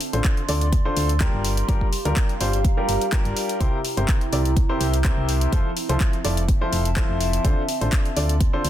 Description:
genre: piano house.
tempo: 125 BPM.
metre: 4/4.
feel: swing 53% on 16ths.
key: F major.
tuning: A4 = 439 Hz.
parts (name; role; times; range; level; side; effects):
house drum kit; drums; 0.0-8.7 s; handclaps, hi-hat; -29 LUFS; left 2 dB; none.
warbly tape-like pad; texture; 0.0-8.7 s; C4 to C6; -29 LUFS; right 3 dB; chorus, built-in reverb, sidechain pumping.
warm concert grand piano; riff; 0.1-8.7 s; C3 to D5; -26 LUFS; left 2 dB; sidechain pumping, tape echo.
solid FM bass; bass; 0.1-8.7 s; F1 to D2; -23 LUFS; equal; sidechain pumping.
electronic kick drum; drums; 0.2-8.5 s; none; -21 LUFS; equal; none.
room: little or no reverb.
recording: dense, heavily limited modern master.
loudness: -19 LUFS.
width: side -12 dB against mid.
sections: 0.0-8.7 A section.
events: none.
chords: 0.0 Dm7; 1.4 Gm7; 3.6 C7; 5.5 Fmaj7; 7.4 Dm7.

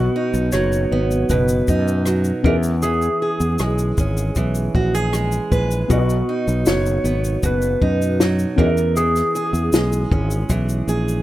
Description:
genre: acoustic pop.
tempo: 78 BPM.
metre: 4/4.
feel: straight.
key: unclear.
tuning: A4 = 441 Hz.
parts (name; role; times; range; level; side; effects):
clean lap steel guitar; melody; 0.0-11.2 s; F#4 to C#5; -24 LUFS; right 1 dB; none.
felt-muted upright piano; accompaniment; 0.0-11.2 s; B3 to E5; -29 LUFS; left 6 dB; none.
picked steel-string acoustic guitar; accompaniment; 0.0-11.2 s; B2 to B4; -22 LUFS; right 2 dB; none.
fretless electric bass; bass; 0.0-11.2 s; F#1 to F#2; -20 LUFS; equal; none.
compact cocktail drum kit; drums; 0.3-11.2 s; kick drum, rim click, shaker, snare drum; -21 LUFS; left 1 dB; none.
room: little or no reverb.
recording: rough home demo mix.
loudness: -16 LUFS.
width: side -15 dB against mid.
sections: 0.0-11.2 A section.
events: none.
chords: 0.0 B; 2.5 E6; 5.9 B; 8.6 E6.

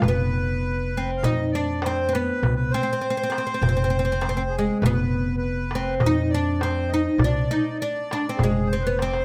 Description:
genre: Arabic maqam ensemble.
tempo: 101 BPM.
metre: 4/4.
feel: straight.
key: F maqam nikriz.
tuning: A4 = 440 Hz.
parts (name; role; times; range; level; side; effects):
oud; melody; 0.0-9.2 s; Ab3 to Eb4; -27 LUFS; equal; none.
accordion; second line; 0.0-9.2 s; Ab4 to F5; -32 LUFS; equal; none.
upright bass; bass; 0.0-9.2 s; F1 to F2; -29 LUFS; equal; none.
darbuka; percussion; 0.0-9.2 s; none; -28 LUFS; equal; none.
room: light reverb.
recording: close, detailed microphones.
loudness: -23 LUFS.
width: mono.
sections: 0.0-9.2 A section.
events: drum fill 9.0.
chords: none.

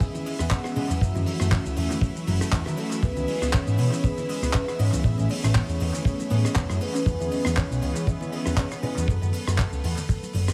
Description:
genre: nu-disco, nu disco.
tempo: 119 BPM.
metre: 4/4.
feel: swing 54% on 16ths.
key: E major.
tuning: A4 = 440 Hz.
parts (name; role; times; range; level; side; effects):
soft octave-layered synth lead; melody; 0.0-10.5 s; A4 to F#5; -36 LUFS; equal; chorus, tremolo, analog delay.
warm analog pad; accompaniment; 0.0-9.1 s; E3 to G#4; -33 LUFS; equal; chorus, cassette tape, analog delay.
clear symphonic string section; sustained chords; 0.0-10.5 s; B3 to E5; -43 LUFS; equal; vintage 12-bit sampler grit, sidechain pumping.
analog pluck; arpeggios; 0.0-9.0 s; C#3 to C#4; -38 LUFS; equal; none.
damped 70s drum kit; drums; 0.0-10.5 s; handclaps, hi-hat, rim click, shaker; -35 LUFS; equal; analog delay.
kick drum; drums; 0.0-10.2 s; none; -26 LUFS; equal; none.
cabasa and congas; percussion; 0.0-10.5 s; none; -39 LUFS; equal; none.
picked electric bass with an envelope filter; bass; 0.4-10.5 s; E1 to D#3; -27 LUFS; equal; none.
room: small room ambience.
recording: echo-heavy mix.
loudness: -25 LUFS.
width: mono.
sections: 0.0-10.5 A section.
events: none.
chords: 0.0 E6; 1.0 F#m7; 3.0 C#m7; 5.0 Amaj9; 7.1 E6; 9.1 F#m.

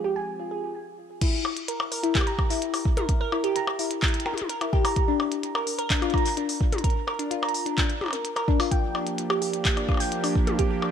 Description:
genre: IDM.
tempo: 128 BPM.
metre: 4/4.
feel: straight.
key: unclear.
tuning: A4 = 440 Hz.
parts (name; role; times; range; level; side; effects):
warm analog pad; sustained chords; 0.0-0.7, 8.7-10.9 s; F3 to G4; -31 LUFS; right 4 dB; chorus, vintage 12-bit sampler grit, sidechain pumping.
harp-like synth pluck; arpeggios; 0.0-10.8 s; D4 to Bb5; -27 LUFS; left 1 dB; chorus, phaser, tape echo.
electronic kick drum; drums; 1.2-10.7 s; none; -24 LUFS; equal; none.
glitchy drum kit; drums; 1.2-10.9 s; crash cymbal, handclaps, hi-hat, percussion blips, toms; -29 LUFS; left 2 dB; low-pass filter on perc, low-pass filter on hats, low-pass filter on cymbals, low-pass filter on snare, low-pass filter on toms, low-pass filter on room, ping-pong delay.
room: light reverb, digital ambience.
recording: none.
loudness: -23 LUFS.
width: side -8 dB against mid.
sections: 0.0-1.2 A section; 1.2-10.9 B section.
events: filter sweep on analog synth pad 0.0-1.2; filter sweep on synth pluck 0.0-1.2; stop 0.7-1.2.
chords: 0.0 Fmadd9; 1.2 Edim; 5.0 Bb; 8.7 Gm7.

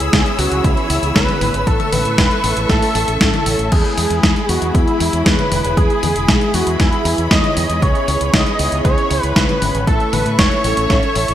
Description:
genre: italo disco.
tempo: 117 BPM.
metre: 4/4.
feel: straight.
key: E major.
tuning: A4 = 441 Hz.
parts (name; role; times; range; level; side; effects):
wide unison lead; melody; 0.0-11.3 s; E4 to D#5; -19 LUFS; right 1 dB; digital delay.
clear studio string section; sustained chords; 0.0-11.3 s; E4 to E6; -24 LUFS; left 1 dB; none.
mellow synth brass; stabs; 0.0-11.3 s; G#3 to C#5; -24 LUFS; left 1 dB; chorus.
fingered electric bass with an envelope filter; bass; 0.0-11.3 s; E1 to A2; -21 LUFS; equal; none.
clean 12-bit digital drum machine; drums; 0.0-11.3 s; crash cymbal, hi-hat, snare drum, toms; -18 LUFS; left 1 dB; gated reverb.
electronic kick drum; drums; 0.1-11.0 s; none; -18 LUFS; equal; overdrive.
room: moderate lush hall reverb, RT60 1.8 s.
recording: bright 1980s-style digital production.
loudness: -13 LUFS.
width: side -11 dB against mid.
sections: 0.0-11.3 A section.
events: none.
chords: 0.0 C#m7; 1.7 A; 3.7 E; 7.8 C#m7; 9.9 A.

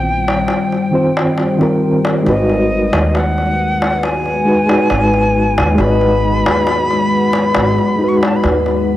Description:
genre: trip hop.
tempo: 68 BPM.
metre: 4/4.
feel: straight.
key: unclear.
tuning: A4 = 440 Hz.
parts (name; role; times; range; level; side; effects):
jazz flute; melody; 0.0-8.4 s; D#5 to C#6; -19 LUFS; equal; vintage 12-bit sampler grit, cassette tape, tape echo.
reed electric piano; accompaniment; 0.0-9.0 s; D#3 to D#5; -17 LUFS; equal; fast tremolo, cassette tape, tape echo.
deep dark ambient pad; sustained chords; 0.0-9.0 s; G3 to F#5; -18 LUFS; left 2 dB; chorus, built-in reverb, vintage 12-bit sampler grit, cassette tape.
upright bass; bass; 0.0-9.0 s; G#1 to D#2; -19 LUFS; equal; none.
darbuka; percussion; 0.3-8.8 s; none; -20 LUFS; left 1 dB; none.
room: moderate studio reverb, RT60 0.6 s.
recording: home recording on cassette.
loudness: -12 LUFS.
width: side -14 dB against mid.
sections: 0.0-2.3 A section; 2.3-9.0 B section.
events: none.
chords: 0.0 D#69; 2.3 G#m7.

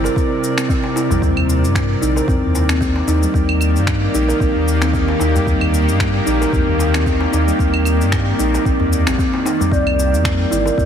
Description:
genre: organic downtempo.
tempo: 113 BPM.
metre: 4/4.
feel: swing 56% on 16ths.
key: unclear.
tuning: A4 = 440 Hz.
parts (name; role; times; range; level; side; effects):
bowed-like drone; sustained chords; 0.0-10.9 s; C3 to D5; -21 LUFS; equal; built-in reverb, sidechain pumping.
kalimba; arpeggios; 0.0-10.9 s; G3 to Bb4; -19 LUFS; equal; ping-pong delay.
warm sub bass; bass; 0.0-10.9 s; G1 to G2; -18 LUFS; equal; sidechain pumping.
darbuka; percussion; 0.0-10.9 s; none; -26 LUFS; left 1 dB; none.
bronze singing bowl; texture; 0.0-10.9 s; Bb4 to D5; -24 LUFS; right 1 dB; none.
electronic shaker, finger snaps and claves; drums; 0.1-10.9 s; none; -25 LUFS; equal; overdrive.
electronic kick drum; drums; 0.2-10.9 s; none; -21 LUFS; equal; overdrive.
room: moderate lush hall reverb, RT60 2.0 s.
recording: heavily compressed radio sound.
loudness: -14 LUFS.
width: side -8 dB against mid.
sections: 0.0-10.9 A section.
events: none.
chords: 0.0 C7(no3); 1.2 Ebmaj7; 9.7 C7sus4.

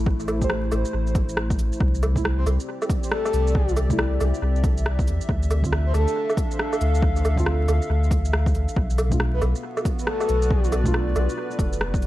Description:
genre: future garage.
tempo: 138 BPM.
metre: 4/4.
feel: swing 62% on 16ths.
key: unclear.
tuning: A4 = 440 Hz.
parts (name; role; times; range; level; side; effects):
dark analog pad; sustained chords; 0.0-12.1 s; A3 to F5; -30 LUFS; equal; chorus, sidechain pumping.
warm sub bass; bass; 0.0-12.1 s; F1 to E2; -22 LUFS; equal; sidechain pumping.
electronic kick drum; drums; 0.1-12.0 s; none; -24 LUFS; equal; overdrive, studio reverb.
electronic shaker, cabasa, woodblock and rim click; drums; 0.2-12.1 s; none; -28 LUFS; right 1 dB; overdrive, studio reverb, analog delay.
muted felt-like synth keys; accompaniment; 0.4-11.0 s; B2 to C5; -30 LUFS; right 1 dB; chorus, sidechain pumping, tape echo.
breathy flute-like synth lead; melody; 2.4-6.3, 9.3-10.7 s; A4 to C5; -30 LUFS; left 2 dB; wide subtle chorus, analog delay.
room: light reverb.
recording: echo-heavy mix, vinyl crackle.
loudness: -20 LUFS.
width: side -15 dB against mid.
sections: 0.0-12.1 A section.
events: none.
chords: 0.0 Am; 1.8 C6; 5.3 Dm7; 8.8 Bm7b5.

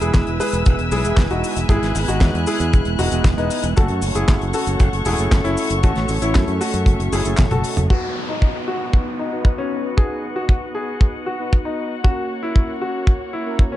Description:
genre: italo disco.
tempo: 116 BPM.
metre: 4/4.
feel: straight.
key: unclear.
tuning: A4 = 439 Hz.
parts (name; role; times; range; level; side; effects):
clear grand piano; melody; 0.0-13.8 s; A3 to B4; -24 LUFS; left 2 dB; digital delay.
warm studio string section; sustained chords; 0.0-13.8 s; A#3 to F#6; -28 LUFS; left 3 dB; low-pass filter.
analog synth brass; stabs; 0.0-13.8 s; G#3 to B4; -27 LUFS; right 3 dB; chorus, digital delay.
modern bright fingered electric bass; bass; 0.0-7.9 s; E1 to F#2; -22 LUFS; equal; tube saturation.
damped 70s drum kit; drums; 0.0-7.9 s; cabasa, handclaps, hi-hat, snare drum, toms; -25 LUFS; left 1 dB; low-pass filter on hats, low-pass filter on toms, low-pass filter on snare, low-pass filter on perc, low-pass filter on room.
kick drum; drums; 0.1-13.7 s; none; -15 LUFS; equal; none.
downlifter; sound effects; 7.9-12.0 s; none; -32 LUFS; equal; none.
room: small room reverb.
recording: nothing above 10.9 kHz.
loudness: -17 LUFS.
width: side -13 dB against mid.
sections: 0.0-7.9 A section; 7.9-13.8 B section.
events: drum fill 7.4-7.9; filter sweep on string section 7.9-13.8.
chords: 0.0 E; 3.8 F#m; 7.9 B; 12.0 F#.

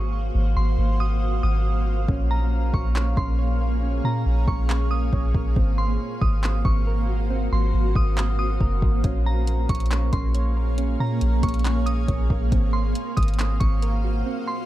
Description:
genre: hip hop, atmospheric cloud-rap.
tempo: 138 BPM.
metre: 4/4.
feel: half-time.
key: Bb minor.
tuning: A4 = 439 Hz.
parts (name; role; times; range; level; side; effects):
granular cloud pad; sustained chords; 0.0-14.7 s; Bb3 to F5; -30 LUFS; right 1 dB; built-in reverb, sidechain pumping.
soft 808-style bass; bass; 0.0-14.2 s; Gb1 to Bb2; -22 LUFS; equal; none.
glassy synth bell; melody; 0.6-14.7 s; Bb5 to Eb6; -33 LUFS; right 2 dB; chorus, low-pass filter, tape echo.
soft electric-piano-like synth keys; arpeggios; 2.1-14.7 s; C4 to Db5; -34 LUFS; right 4 dB; chorus, low-pass filter, tape echo.
smooth R&B drum kit; drums; 2.1-13.9 s; handclaps, hi-hat, kick drum; -24 LUFS; equal; none.
room: little or no reverb.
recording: dark, warm production.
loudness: -20 LUFS.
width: side -15 dB against mid.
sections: 0.0-14.7 A section.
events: hi-hats muted 2.1-9.0; break 14.3-14.7.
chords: 0.0 Ab13; 2.1 Bbm7; 5.6 Ab13; 9.0 Bbm7; 12.5 Ab13.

